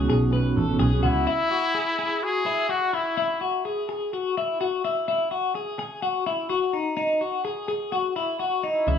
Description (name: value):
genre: indie pop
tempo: 126 BPM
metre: 4/4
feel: straight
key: unclear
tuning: A4 = 440 Hz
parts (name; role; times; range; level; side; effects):
- mellow electric guitar; accompaniment; 0.0-1.3, 8.9-9.0 s; B2 to G#4; -24 LUFS; right 4 dB; tremolo
- twelve-string electric guitar; arpeggios; 0.0-9.0 s; D#4 to B4; -25 LUFS; left 3 dB; tremolo
- vintage muted picked electric bass; bass; 0.0-1.2, 8.9-9.0 s; A1 to C#2; -22 LUFS; left 1 dB; none
- bright trumpet; melody; 1.0-3.4, 8.7-9.0 s; E4 to G#4; -25 LUFS; left 1 dB; slapback echo
room: light reverb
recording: small room ambience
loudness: -22 LUFS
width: side -8 dB against mid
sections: 0.0-1.3 A section; 1.3-9.0 B section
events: none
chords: 0.0 Badd9; 1.3 Eadd9; 6.7 D#madd11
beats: 0.34 0.81 | 1.28 1.76 2.23 2.71 | 3.18 3.66 4.13 4.61 | 5.08 5.56 6.03 6.50 | 6.98 7.45 7.93 8.40 | 8.88